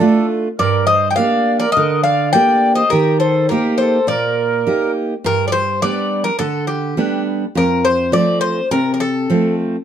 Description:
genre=greek folk, Greek bouzouki band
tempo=104 BPM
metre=4/4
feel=straight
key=unclear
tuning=A4 = 441 Hz
part: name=Greek bouzouki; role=melody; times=0.0-9.5 s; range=G4 to G5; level=-16 LUFS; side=left 2 dB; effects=plate reverb
part: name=accordion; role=second line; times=0.0-4.9 s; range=G4 to Eb5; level=-21 LUFS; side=right 5 dB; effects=none
part: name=picked steel-string acoustic guitar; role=accompaniment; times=0.0-9.8 s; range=F2 to G4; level=-17 LUFS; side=right 2 dB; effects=none
room=moderate studio reverb, RT60 0.5 s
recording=dark, warm production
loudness=-14 LUFS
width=side -9 dB against mid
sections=0.0-5.2 A section; 5.2-9.8 A section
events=none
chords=0.0 Dm; 0.6 Gm; 2.9 Eb; 5.2 G; 7.6 F

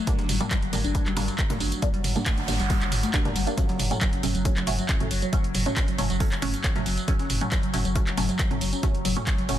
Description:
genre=driving peak-time techno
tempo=137 BPM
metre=4/4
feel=straight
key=F# phrygian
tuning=A4 = 440 Hz
part: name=woody wave-folded pluck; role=riff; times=0.0-9.6 s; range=F#3 to D4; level=-31 LUFS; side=equal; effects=tube saturation, lush chorus, sidechain pumping, tape echo
part: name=overtone-sweeping drone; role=drone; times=0.0-9.6 s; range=F#3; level=-36 LUFS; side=left 3 dB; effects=chorus, built-in reverb, sidechain pumping
part: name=filtered dub chord stab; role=stabs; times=0.1-9.5 s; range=F#3 to D4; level=-32 LUFS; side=right 1 dB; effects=phaser, wide subtle chorus, sidechain pumping, digital delay
part: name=breakbeat sampler-style drum kit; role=drums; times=0.1-9.6 s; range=hi-hat, snare drum, tambourine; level=-41 LUFS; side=left 4 dB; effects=sidechain pumping on hats, high-pass filter on hats, high-pass filter on snare, sidechain pumping on perc, high-pass filter on perc
part: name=electronic kick drum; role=drums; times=0.1-9.4 s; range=none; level=-26 LUFS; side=equal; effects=none
part: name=punchy analog drum machine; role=drums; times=0.1-9.6 s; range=handclaps, hi-hat, tambourine, toms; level=-29 LUFS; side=right 1 dB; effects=sidechain pumping on hats, sidechain pumping on perc, sidechain pumping on toms
part: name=saturated sub bass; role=bass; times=0.2-9.6 s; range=F#1 to G1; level=-30 LUFS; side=equal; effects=overdrive, sidechain pumping, low-pass filter
part: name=noise sweep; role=sound effects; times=2.0-3.6 s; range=none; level=-35 LUFS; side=right 5 dB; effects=none
room=light reverb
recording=dense, heavily limited modern master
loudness=-22 LUFS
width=side -12 dB against mid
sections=0.0-9.6 A section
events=noise sweep 2.0-3.6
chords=0.0 Gm; 3.6 F#m

